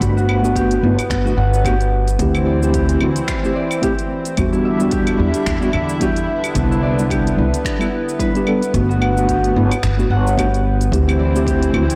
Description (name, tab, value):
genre	sunset chillout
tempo	110 BPM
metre	4/4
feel	swing 56% on 16ths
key	G major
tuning	A4 = 440 Hz
part	mellow tine electric piano	accompaniment	0.0-11.8 s	G3 to A4	-22 LUFS	equal	tape echo
part	lush unison pad	sustained chords	0.0-12.0 s	D3 to E4	-26 LUFS	equal	chorus
part	Celtic harp	arpeggios	0.0-12.0 s	E4 to F#5	-28 LUFS	equal	tape echo
part	upright bass	bass	0.0-11.9 s	G1 to E2	-20 LUFS	equal	none
part	electronic kick drum	drums	0.0-11.6 s	none	-27 LUFS	equal	overdrive
part	smooth R&B drum kit	drums	0.0-12.0 s	claves, finger snaps, hi-hat, shaker	-31 LUFS	equal	soft clipping on snare
room	moderate lush hall reverb, RT60 1.8 s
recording	blown-out, overdriven recording, overdrive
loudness	-17 LUFS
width	mono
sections	0.0-12.0 A section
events	none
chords	0.0 Gmaj7; 2.2 D9sus4; 4.4 Em7; 6.3 Cmaj9; 8.7 Gmaj7; 10.9 D9sus4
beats	| 0.01 0.56 1.10 1.65 | 2.19 2.74 3.29 3.83 | 4.38 4.92 5.47 6.01 | 6.56 7.10 7.65 8.19 | 8.74 9.29 9.83 10.38 | 10.92 11.47